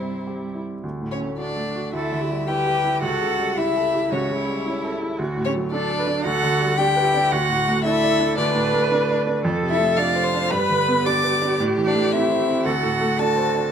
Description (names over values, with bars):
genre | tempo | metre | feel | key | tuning
quick classical-period movement for piano quartet | 112 BPM | 4/4 | rubato | D major | A4 = 440 Hz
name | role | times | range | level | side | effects
rich violin | melody | 0.0-13.7 s | C5 to D6 | -24 LUFS | left 7 dB | none
rich cello | second line | 0.0-13.7 s | G3 to D5 | -26 LUFS | right 5 dB | none
clear baby grand piano | accompaniment | 0.0-13.7 s | C2 to D5 | -24 LUFS | right 1 dB | none
clear viola | accompaniment | 0.0-13.7 s | E4 to D5 | -25 LUFS | right 3 dB | none
room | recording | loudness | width
moderate recital hall reverb, RT60 1.4 s | close, detailed microphones | -19 LUFS | side -8 dB against mid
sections
0.8-13.7 A section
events
none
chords
0.0 C; 0.8 D; 1.9 Em7/D; 3.0 A7/C#; 5.2 D; 6.3 G/D; 7.3 D; 9.4 Dm7/F; 10.5 G; 11.6 Am; 12.7 D7